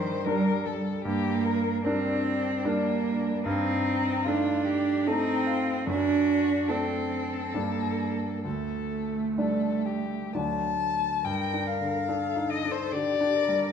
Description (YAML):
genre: classical, slow romantic movement for piano trio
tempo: 61-75 BPM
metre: 3/4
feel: rubato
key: G minor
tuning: A4 = 440 Hz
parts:
  - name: rich violin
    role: melody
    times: 0.0-13.7 s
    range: D4 to A5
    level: -31 LUFS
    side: left 8 dB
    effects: none
  - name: clear cello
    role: second line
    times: 0.0-13.7 s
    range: Eb3 to Bb4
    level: -28 LUFS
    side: right 4 dB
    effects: none
  - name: clear concert grand piano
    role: accompaniment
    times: 0.0-13.7 s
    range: D2 to D5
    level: -30 LUFS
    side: equal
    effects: none
room: wet recital hall reverb, RT60 1.4 s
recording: minimal, uncompressed stereo recording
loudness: -25 LUFS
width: side -7 dB against mid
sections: 0.0-11.2 A section; 11.2-13.7 B section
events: none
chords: 0.0 Gm; 3.5 Am7b5/G; 5.9 D/F#; 7.5 Gm; 8.4 Dsus4; 10.3 D; 11.2 Gm